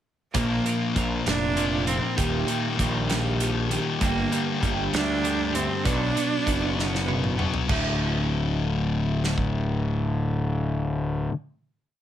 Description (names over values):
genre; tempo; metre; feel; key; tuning
quiet-loud alternative rock; 65 BPM (dotted quarters); 6/8; straight; unclear; A4 = 440 Hz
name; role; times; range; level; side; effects
clear cello; melody; 0.3-7.1 s; Bb3 to D4; -28 LUFS; right 4 dB; none
twelve-string electric guitar; arpeggios; 0.3-11.3 s; D2 to B4; -32 LUFS; right 6 dB; wide subtle chorus
sludgy distorted guitar; riff; 0.3-11.3 s; D2 to B3; -26 LUFS; left 5 dB; overdrive
fuzz picked electric bass; bass; 0.3-11.3 s; D1 to D2; -29 LUFS; right 1 dB; overdrive
loose indie drum kit; drums; 0.3-9.5 s; crash cymbal, hi-hat, kick drum, snare drum, toms; -29 LUFS; right 1 dB; none
room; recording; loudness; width
light reverb; none; -22 LUFS; side -11 dB against mid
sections
0.3-7.7 pre-chorus; 7.7-11.4 final chord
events
drum fill 6.8-7.7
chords
0.3 Bb; 2.2 Eb; 4.0 Gm; 5.9 Bm; 7.7 Dsus2